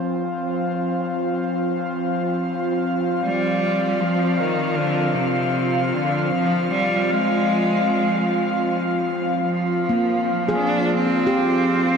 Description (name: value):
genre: ambient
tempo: 78 BPM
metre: 4/4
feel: straight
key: F dorian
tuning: A4 = 441 Hz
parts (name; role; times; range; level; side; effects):
- airy breathy pad; sustained chords; 0.0-12.0 s; F3 to F5; -21 LUFS; equal; chorus
- clear cello; melody; 3.2-12.0 s; C3 to D4; -22 LUFS; equal; ping-pong delay
- handpan; arpeggios; 9.9-12.0 s; Bb3 to Ab4; -22 LUFS; equal; ping-pong delay
room: wet huge ambient reverb, RT60 8.1 s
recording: none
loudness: -19 LUFS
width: side -6 dB against mid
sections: 0.0-9.4 A section; 9.4-12.0 B section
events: none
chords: 0.0 F5; 9.4 Fm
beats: | 0.16 0.93 1.70 2.47 | 3.24 4.01 4.78 5.55 | 6.32 7.09 7.86 8.62 | 9.39 10.16 10.93 11.70